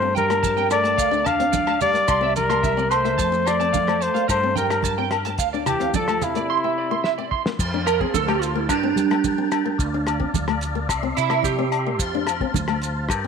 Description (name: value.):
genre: highlife guitar band.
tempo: 109 BPM.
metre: 4/4.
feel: straight.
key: F major.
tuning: A4 = 440 Hz.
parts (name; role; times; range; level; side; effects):
mellow trumpet; melody; 0.0-7.3 s; E4 to F5; -22 LUFS; left 4 dB; tape echo.
trombone with bucket mute; second line; 0.0-7.3 s; C3 to D4; -30 LUFS; right 10 dB; none.
flamenco guitar; accompaniment; 0.0-13.3 s; A3 to D4; -30 LUFS; left 12 dB; none.
fingered electric bass; bass; 0.0-13.3 s; C2 to G3; -28 LUFS; equal; none.
clean electric guitar; arpeggios; 0.1-12.2 s; D4 to C6; -25 LUFS; right 11 dB; ensemble chorus, tape echo.
cloth-damped thuddy drum kit; drums; 0.2-13.2 s; crash cymbal, hi-hat, kick drum, rim click, snare drum; -29 LUFS; left 1 dB; none.
congas; percussion; 0.2-13.2 s; none; -31 LUFS; right 10 dB; none.
maracas; percussion; 0.2-13.2 s; none; -33 LUFS; right 12 dB; none.
agogo bells; percussion; 0.3-13.2 s; none; -29 LUFS; left 14 dB; none.
percussive tonewheel organ; sustained chords; 7.6-13.3 s; Bb4 to C6; -30 LUFS; left 1 dB; slow rotary speaker, chorus vibrato.
room: moderate echo chamber reverb, RT60 2.2 s.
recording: 1960s-style stereo with parts hard left and right.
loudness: -19 LUFS.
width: side -6 dB against mid.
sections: 0.0-7.6 A section; 7.6-13.3 B section.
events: drum fill 7.0-7.6; clean electric guitar solo 7.6-13.3.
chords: 0.0 Gmadd9; 1.0 Dm; 2.1 Cadd9; 3.2 F; 4.3 Gmadd9; 5.4 Dm; 6.5 Cadd9; 7.6 F; 8.7 Gmadd9; 9.8 Dm; 10.9 Cadd9; 12.0 F.